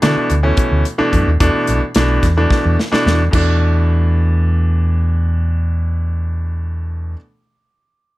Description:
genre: electric jazz fusion.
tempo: 218 BPM (eighths).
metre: 7/8.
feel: straight.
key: unclear.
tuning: A4 = 440 Hz.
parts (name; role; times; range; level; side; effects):
bright grand piano; accompaniment; 0.0-7.2 s; B2 to D4; -18 LUFS; equal; none.
fingered electric bass; bass; 0.0-7.1 s; B1 to D3; -15 LUFS; equal; none.
modern studio drum kit; drums; 0.0-3.5 s; china cymbal, hi-hat, kick drum, snare drum; -18 LUFS; equal; none.
room: light reverb.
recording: none.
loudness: -13 LUFS.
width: side -18 dB against mid.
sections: 0.0-3.3 A section; 3.3-7.2 B section.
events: drum fill 2.5-3.3.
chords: 0.0 D5; 1.4 E5.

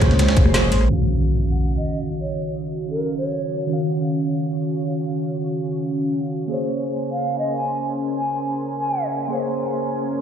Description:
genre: liquid drum and bass.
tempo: 171 BPM.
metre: 4/4.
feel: straight.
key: unclear.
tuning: A4 = 441 Hz.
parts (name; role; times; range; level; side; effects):
mellow tine electric piano; accompaniment; 0.0-10.2 s; Eb3 to F5; -24 LUFS; equal; medium stereo tremolo, ping-pong delay.
lush unison pad; sustained chords; 0.0-10.2 s; Ab3 to C6; -27 LUFS; right 1 dB; chorus, phaser.
dark detuned saw bass; bass; 0.0-0.9 s; F1 to Db2; -18 LUFS; equal; none.
dusty soul sampler-style drum kit; drums; 0.0-0.8 s; hi-hat, ride cymbal, snare drum; -27 LUFS; equal; high-pass filter on cymbals, high-pass filter on snare, high-pass filter on hats.
garage drum kit; drums; 0.0-0.9 s; hi-hat, rim click, snare drum; -25 LUFS; left 1 dB; low-pass filter on hats, low-pass filter on snare, low-pass filter on room.
congas; percussion; 0.0-0.5 s; none; -28 LUFS; left 4 dB; none.
impact; sound effects; 0.9-2.3 s; none; -22 LUFS; equal; none.
breathy mellow silver concert flute; melody; 1.5-3.7, 7.1-9.1 s; Bb4 to Ab5; -27 LUFS; right 1 dB; digital delay.
room: moderate scoring stage reverb, RT60 1.5 s.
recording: played on a big sound system in a bare room, large studio reverb, low-pass filter.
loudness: -20 LUFS.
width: side -8 dB against mid.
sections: 0.9-10.2 A section.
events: impact 0.9-2.3; filter sweep on analog synth pad 0.9-10.2; filter sweep 0.9-10.2.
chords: 0.0 Bbm9; 0.9 Ebm9; 6.5 Bbm9.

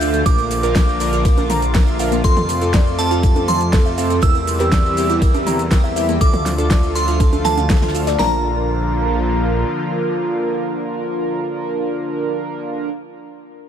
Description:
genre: progressive house.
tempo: 121 BPM.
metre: 4/4.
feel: straight.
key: Bb lydian.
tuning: A4 = 440 Hz.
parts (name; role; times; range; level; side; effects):
glassy synth bell; melody; 0.0-12.9 s; A5 to G6; -23 LUFS; right 2 dB; chorus, phaser, sidechain pumping, tape echo.
filtered supersaw swell; sustained chords; 0.0-12.9 s; C3 to F4; -26 LUFS; left 2 dB; sidechain pumping.
glassy wavetable pluck; arpeggios; 0.0-8.4 s; A3 to Bb5; -24 LUFS; left 1 dB; chorus, sidechain pumping, tape echo.
chorused polysynth; stabs; 0.0-12.9 s; C4 to Bb4; -23 LUFS; right 2 dB; sidechain pumping, tape echo.
dark detuned saw bass; bass; 0.0-9.6 s; Bb1 to F2; -21 LUFS; equal; tube saturation, sidechain pumping.
pop drum kit; drums; 0.0-8.2 s; hi-hat, ride cymbal, shaker, snare drum; -25 LUFS; equal; overdrive, sidechain pumping on hats, sidechain pumping on cymbals, sidechain pumping on perc.
soft brush drum kit; drums; 0.0-8.2 s; hi-hat, snare drum; -35 LUFS; right 2 dB; none.
drifting glass-harmonics texture; texture; 0.0-8.2 s; D6; -37 LUFS; right 7 dB; none.
pop drum kit; drums; 0.3-8.3 s; hi-hat, kick drum, snare drum; -15 LUFS; equal; overdrive.
electronic congas and toms; percussion; 0.8-7.9 s; none; -26 LUFS; right 4 dB; sidechain pumping on perc, sidechain pumping on toms.
room: little or no reverb.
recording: none.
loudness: -15 LUFS.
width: side -9 dB against mid.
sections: 0.0-8.2 A section; 8.2-12.2 B section.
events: drop 0.0-8.2.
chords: 0.3 Bb; 2.2 F; 4.2 C/E; 6.2 Dm; 8.2 Bb.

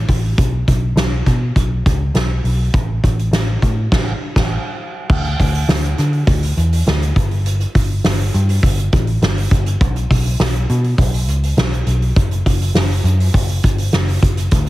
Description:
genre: piano-driven pop.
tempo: 102 BPM.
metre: 4/4.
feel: straight.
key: unclear.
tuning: A4 = 438 Hz.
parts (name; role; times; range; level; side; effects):
vintage muted picked electric bass; bass; 0.0-14.7 s; F#1 to D3; -16 LUFS; equal; none.
soft-mallet drum kit; drums; 0.1-14.7 s; crash cymbal, hi-hat, kick drum, snare drum; -17 LUFS; equal; none.
room: little or no reverb.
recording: heavily compressed radio sound, multiband compression.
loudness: -14 LUFS.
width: side -17 dB against mid.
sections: 0.0-5.1 A section; 5.1-14.7 B section.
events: band accent 3.9-5.1.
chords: none.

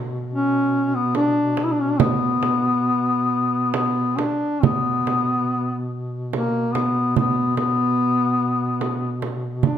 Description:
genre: caucasian folk, Caucasian lament.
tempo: 66-74 BPM.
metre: 3/4.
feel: rubato.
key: B harmonic minor.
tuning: A4 = 440 Hz.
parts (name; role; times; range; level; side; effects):
mellow duduk; drone; 0.0-9.8 s; B2; -28 LUFS; equal; none.
mellow duduk; melody; 0.3-9.8 s; A#3 to E4; -20 LUFS; left 1 dB; slapback echo.
frame drum; percussion; 1.1-9.8 s; none; -23 LUFS; right 6 dB; none.
room: moderate recital hall reverb, RT60 1.6 s.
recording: close, detailed microphones.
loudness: -19 LUFS.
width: side -9 dB against mid.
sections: 0.0-4.6 A section; 4.6-9.8 B section.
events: none.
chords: none.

